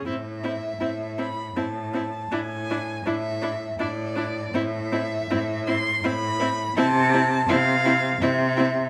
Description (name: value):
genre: classical, slow romantic movement for string quartet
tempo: 81 BPM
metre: 3/4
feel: rubato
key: A minor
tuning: A4 = 440 Hz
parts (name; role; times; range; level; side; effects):
- warm violin; second line; 0.0-8.6 s; E4; -32 LUFS; equal; none
- clear viola; accompaniment; 0.0-8.7 s; C4 to D4; -32 LUFS; equal; none
- dark violin; melody; 0.1-8.9 s; D5 to C6; -29 LUFS; equal; none
- rich cello; bass; 0.1-8.8 s; A2 to C3; -29 LUFS; equal; none
room: moderate large studio reverb, RT60 1.2 s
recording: none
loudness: -24 LUFS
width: mono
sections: 0.1-8.9 A section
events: none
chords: 0.1 Am; 2.3 E7/A; 4.5 Am; 6.8 Am/C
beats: | 0.06 0.81 1.56 | 2.32 3.06 3.79 | 4.54 5.30 6.04 | 6.76 7.49 8.21